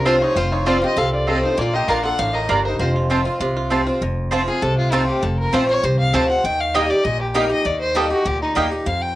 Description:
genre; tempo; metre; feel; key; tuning
bluegrass; 198 BPM; 4/4; straight; F mixolydian; A4 = 440 Hz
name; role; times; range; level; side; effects
bluegrass banjo; melody; 0.0-8.6 s; Bb3 to Bb4; -28 LUFS; right 3 dB; cassette tape
warm fiddle; melody; 0.0-9.2 s; Eb4 to A5; -22 LUFS; left 1 dB; cassette tape
lap resonator guitar; second line; 0.0-3.0 s; Eb4 to Bb4; -25 LUFS; left 2 dB; none
picked swing-style acoustic guitar; accompaniment; 0.0-9.2 s; F2 to G4; -22 LUFS; left 1 dB; none
upright bass; bass; 0.0-9.2 s; F1 to F2; -24 LUFS; equal; none
mandolin; stabs; 0.1-8.7 s; Bb3 to Bb5; -21 LUFS; right 3 dB; none
room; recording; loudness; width
moderate studio reverb, RT60 0.6 s; home recording on cassette, lossy compression artefacts; -17 LUFS; side -15 dB against mid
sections
0.0-4.0 A section; 4.0-9.2 B section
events
none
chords
0.0 F; 1.6 Bb; 2.8 F; 6.4 Eb

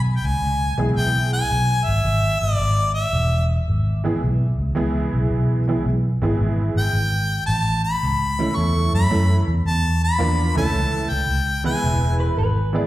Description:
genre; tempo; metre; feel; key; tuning
blues; 110 BPM; 4/4; swing 68% on 8ths; E major; A4 = 440 Hz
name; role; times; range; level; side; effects
vintage muted fingered electric bass; bass; 0.0-12.8 s; E1 to F#2; -20 LUFS; equal; none
bright harmonica; melody; 0.2-3.5, 6.8-12.2 s; D5 to C#6; -23 LUFS; left 1 dB; slapback echo, analog delay
honky-tonk upright piano; accompaniment; 0.8-12.9 s; E3 to B4; -24 LUFS; right 2 dB; slapback echo
electric guitar through a small old amp; second line; 12.2-12.9 s; B4 to D5; -26 LUFS; right 1 dB; tremolo, slapback echo, analog delay
room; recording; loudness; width
little or no reverb; live gig heard through the venue's PA, recital hall reverb; -18 LUFS; side -15 dB against mid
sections
0.0-12.9 A section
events
none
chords
0.0 E; 7.5 A; 11.8 E

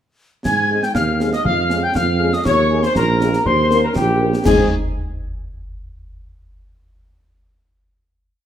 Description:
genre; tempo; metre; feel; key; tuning
military-style march for wind band; 120 BPM; 2/4; straight; Ab major; A4 = 440 Hz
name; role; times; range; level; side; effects
mellow trumpet section; melody; 0.4-4.7 s; G4 to Ab5; -20 LUFS; left 2 dB; none
piccolo; second line; 0.4-4.7 s; G5 to Ab6; -22 LUFS; left 2 dB; none
mellow tuba; bass; 0.5-4.7 s; Bb1 to Ab2; -19 LUFS; right 3 dB; none
concert snare drum, clash cymbals and concert bass drum; drums; 0.5-4.7 s; none; -23 LUFS; equal; none
mellow French horn section; accompaniment; 0.7-4.7 s; Ab3 to Bb4; -23 LUFS; left 4 dB; none
room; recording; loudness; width
wet large studio reverb, RT60 1.2 s; none; -14 LUFS; side -10 dB against mid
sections
0.5-4.5 A section; 4.5-5.5 final chord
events
none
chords
0.5 Ab; 1.5 Db/F; 2.5 Ebsus4; 3.5 Eb7; 4.5 Ab

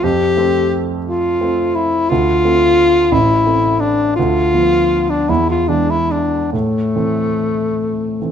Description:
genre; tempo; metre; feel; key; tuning
classical, romantic duo for alto saxophone and grand piano; 46-60 BPM (dotted quarters); 6/8; rubato; A minor; A4 = 440 Hz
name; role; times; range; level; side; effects
warm alto saxophone; melody; 0.0-8.3 s; A3 to G4; -14 LUFS; left 2 dB; none
warm grand piano; accompaniment; 0.0-8.3 s; A1 to C4; -18 LUFS; right 4 dB; none
room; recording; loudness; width
light reverb; minimal, uncompressed stereo recording; -13 LUFS; side -8 dB against mid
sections
0.0-8.3 A section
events
none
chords
0.0 F; 2.1 Dm7; 3.1 Am; 4.2 Bdim/D; 5.3 E; 6.5 Am

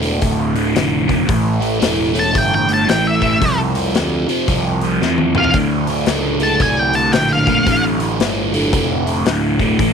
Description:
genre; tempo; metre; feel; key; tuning
blues rock power trio and southern rock; 113 BPM; 4/4; swing 63% on 8ths; D minor; A4 = 440 Hz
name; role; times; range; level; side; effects
crunchy overdriven guitar; riff; 0.0-9.9 s; D2 to A3; -17 LUFS; right 1 dB; phaser
fuzz picked electric bass; bass; 0.0-9.9 s; D1 to E2; -21 LUFS; right 1 dB; overdrive
big rock drum kit; drums; 0.0-9.9 s; hi-hat, kick drum, snare drum, toms; -21 LUFS; left 3 dB; none
octave-fuzz lead guitar; melody; 2.2-7.8 s; E5 to A5; -17 LUFS; equal; distortion
room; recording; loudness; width
small room ambience; 1960s-style stereo; -14 LUFS; side -6 dB against mid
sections
0.0-9.9 A section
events
drum fill 5.0-5.5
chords
0.0 Dm; 1.3 A5; 3.4 F5; 5.5 Dm

